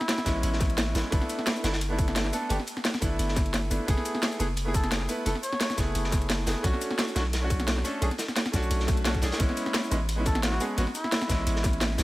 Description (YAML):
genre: liquid drum and bass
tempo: 174 BPM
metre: 4/4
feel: swing 54% on 16ths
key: A major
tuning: A4 = 439 Hz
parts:
  - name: trumpet with cup mute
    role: melody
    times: 0.0-0.4, 4.7-5.8, 10.3-11.4 s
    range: E4 to C#5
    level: -36 LUFS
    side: equal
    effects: dub echo
  - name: drum and bass drum kit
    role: drums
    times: 0.0-12.0 s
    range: hi-hat, ride cymbal, shaker, snare drum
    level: -31 LUFS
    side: equal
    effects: overdrive
  - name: crunchy breakbeat drum kit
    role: drums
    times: 0.1-12.0 s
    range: hi-hat, snare drum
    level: -34 LUFS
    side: equal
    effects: high-pass filter on hats, high-pass filter on snare, high-pass filter on room
  - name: bright concert grand piano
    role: accompaniment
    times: 0.2-12.0 s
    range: G#3 to B4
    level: -31 LUFS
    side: equal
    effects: dub echo
  - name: long sustained 808-style bass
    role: bass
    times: 0.3-12.0 s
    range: F#1 to B1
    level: -29 LUFS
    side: equal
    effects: none
  - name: electronic kick drum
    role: drums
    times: 0.3-11.7 s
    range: none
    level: -27 LUFS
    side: equal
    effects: overdrive
  - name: swell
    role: sound effects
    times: 8.8-9.4 s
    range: none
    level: -43 LUFS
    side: left 4 dB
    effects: none
room: small room ambience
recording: none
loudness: -25 LUFS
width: side -18 dB against mid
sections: 0.0-12.0 A section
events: none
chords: 0.0 Amaj9; 1.1 G69; 3.9 F#m11; 6.6 Bm7; 9.4 Amaj9